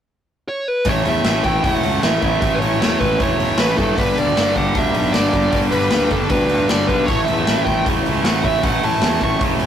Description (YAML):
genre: punk rock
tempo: 155 BPM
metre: 4/4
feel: straight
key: A mixolydian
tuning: A4 = 438 Hz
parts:
  - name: high-gain lead guitar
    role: melody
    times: 0.5-9.4 s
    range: A4 to C#6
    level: -21 LUFS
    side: equal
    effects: distortion
  - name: raw garage drum kit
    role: drums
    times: 0.8-9.7 s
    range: hi-hat, kick drum, snare drum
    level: -21 LUFS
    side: left 1 dB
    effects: none
  - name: distorted electric guitar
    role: riff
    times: 0.9-9.7 s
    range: G2 to E4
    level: -23 LUFS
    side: left 3 dB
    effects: distortion
  - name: overdriven electric guitar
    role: riff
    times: 0.9-9.7 s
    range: G2 to A3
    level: -21 LUFS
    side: right 5 dB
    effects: none
  - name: fuzz picked electric bass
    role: bass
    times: 0.9-9.7 s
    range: E1 to G2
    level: -23 LUFS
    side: equal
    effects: overdrive
room: light reverb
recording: rough rehearsal-room recording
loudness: -15 LUFS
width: side -9 dB against mid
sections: 0.9-9.7 A section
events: none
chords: 0.0 N.C.; 0.9 A; 4.0 G; 7.1 A